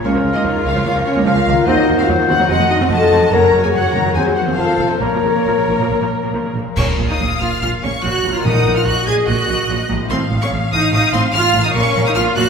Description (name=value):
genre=classical, dramatic, fast romantic movement for symphony orchestra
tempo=145 BPM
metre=4/4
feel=rubato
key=Bb minor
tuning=A4 = 440 Hz
part: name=bright symphonic violin section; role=melody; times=0.0-12.5 s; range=C5 to Ab6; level=-23 LUFS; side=left 2 dB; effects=none
part: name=clear symphonic violin section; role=second line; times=0.0-12.5 s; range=Bb4 to Bb5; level=-23 LUFS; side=left 2 dB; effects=none
part: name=dark clarinet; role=second line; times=0.0-6.5 s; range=Bb4 to Eb5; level=-22 LUFS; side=left 3 dB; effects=none
part: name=mellow hollow concert flute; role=second line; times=0.0-6.6 s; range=F5 to Bb5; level=-23 LUFS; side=left 2 dB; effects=none
part: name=rich chamber viola section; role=accompaniment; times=0.0-12.5 s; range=Db3 to Bb4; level=-21 LUFS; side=right 2 dB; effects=none
part: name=mellow French horn section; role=sustained chords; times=0.0-6.5 s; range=Bb3 to Bb4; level=-18 LUFS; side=left 2 dB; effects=none
part: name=concert harp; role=arpeggios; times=0.0-12.5 s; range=F2 to Eb5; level=-24 LUFS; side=left 6 dB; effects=none
part: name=rich symphonic cello section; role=bass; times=0.0-12.4 s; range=Db2 to Bb2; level=-22 LUFS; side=right 3 dB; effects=none
part: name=rich symphonic double bass section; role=bass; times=0.0-12.4 s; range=F1 to Eb2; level=-23 LUFS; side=right 3 dB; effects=none
part: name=timpani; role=percussion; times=2.5-3.1, 8.5-9.0 s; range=F2 to Bb2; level=-22 LUFS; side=right 1 dB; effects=none
part: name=clash cymbals and concert bass drum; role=percussion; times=6.8-7.6 s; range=none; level=-22 LUFS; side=right 1 dB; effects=none
room=wet recital hall reverb, RT60 1.5 s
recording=heard from further back in the room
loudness=-13 LUFS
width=side -6 dB against mid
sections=0.0-6.8 A section; 6.8-12.5 A section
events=band accent 6.8-7.2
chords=0.0 Bbm/Db; 1.7 Cdim/Eb; 2.5 F7b9; 3.3 Gb; 4.2 Cdim/Eb; 4.6 F; 5.0 Bbm; 8.5 Ebm/Bb; 10.1 F7/A; 11.7 Bbm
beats=| 0.04 0.45 0.86 1.26 | 1.67 2.08 2.49 2.90 | 3.32 3.74 4.15 4.58 | 5.02 5.46 5.90 6.34 | 6.77 7.20 7.62 8.04 | 8.45 8.86 9.28 9.69 | 10.10 10.52 10.93 11.34 | 11.75 12.16